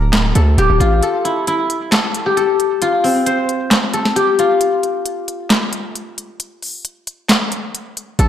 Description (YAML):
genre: hip hop, trap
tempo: 134 BPM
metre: 4/4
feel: half-time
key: unclear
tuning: A4 = 439 Hz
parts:
  - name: guzheng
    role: melody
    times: 0.0-8.3 s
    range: C4 to D5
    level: -16 LUFS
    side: left 2 dB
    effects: low-pass filter, tape echo
  - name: distorted 808-style bass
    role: bass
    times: 0.0-1.0, 8.2-8.3 s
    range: D1 to D2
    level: -13 LUFS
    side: right 1 dB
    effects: distortion
  - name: trap drum kit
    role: drums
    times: 0.1-8.3 s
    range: handclaps, hi-hat, snare drum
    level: -17 LUFS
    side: equal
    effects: none
room: wet lush hall reverb, RT60 1.7 s, digital ambience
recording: dreamy mix soaked in reverb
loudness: -14 LUFS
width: side -10 dB against mid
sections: 0.0-8.3 A section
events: break 1.0-8.2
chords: 0.0 D5; 1.0 N.C.